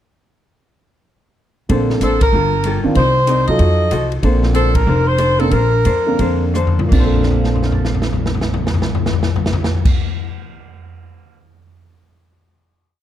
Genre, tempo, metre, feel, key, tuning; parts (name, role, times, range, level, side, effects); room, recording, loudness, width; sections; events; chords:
jazz, big band swing; 160-190 BPM; 4/4; swing 64% on 8ths; Bb major; A4 = 436 Hz
archtop guitar, miked and amplified; accompaniment; 1.7-10.4 s; F3 to Eb5; -24 LUFS; left 5 dB
warm grand piano; accompaniment; 1.7-10.2 s; Bb2 to C7; -20 LUFS; right 2 dB
upright bass; bass; 1.7-9.9 s; F1 to C3; -17 LUFS; equal
swinging big-band drum kit; drums; 1.7-11.4 s; crash cymbal, hi-hat, kick drum, ride cymbal, snare drum, toms; -18 LUFS; left 1 dB
clear saxophone section; melody; 2.0-6.6 s; A4 to Eb5; -17 LUFS; equal
light reverb; dark, warm production; -13 LUFS; side -11 dB against mid
1.7-6.9 A section; 6.9-9.9 final chord
band accent 2.2, 4.7; slowing down 4.2-6.9; drum fill 6.6-6.9, 7.1-9.8
1.7 Bbmaj9; 2.3 Gm9; 3.0 Cm9; 3.6 F7b9; 4.2 Bbmaj9